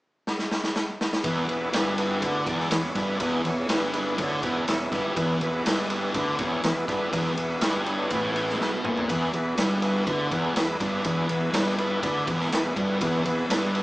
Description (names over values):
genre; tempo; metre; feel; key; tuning
blues rock power trio and southern rock; 122 BPM; 4/4; straight; E mixolydian; A4 = 440 Hz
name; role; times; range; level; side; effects
raw garage drum kit; drums; 0.3-13.8 s; kick drum, ride cymbal, snare drum, toms; -28 LUFS; equal; none
overdriven tonewheel organ; sustained chords; 1.2-13.8 s; B3 to E5; -29 LUFS; equal; chorus vibrato, slow rotary speaker
thick fuzz guitar; riff; 1.2-13.8 s; E2 to D3; -27 LUFS; equal; distortion
fuzz fingered electric bass; bass; 1.2-13.8 s; E1 to D2; -36 LUFS; equal; overdrive
room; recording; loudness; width
moderate large studio reverb, RT60 1.2 s; band playing live in one room, small speaker sound; -23 LUFS; side -19 dB against mid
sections
0.0-1.2 A section; 1.2-13.8 B section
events
drum fill 0.3-1.2, 8.6-9.1; tonewheel organ fill 4.4-5.2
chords
0.0 N.C.; 1.2 E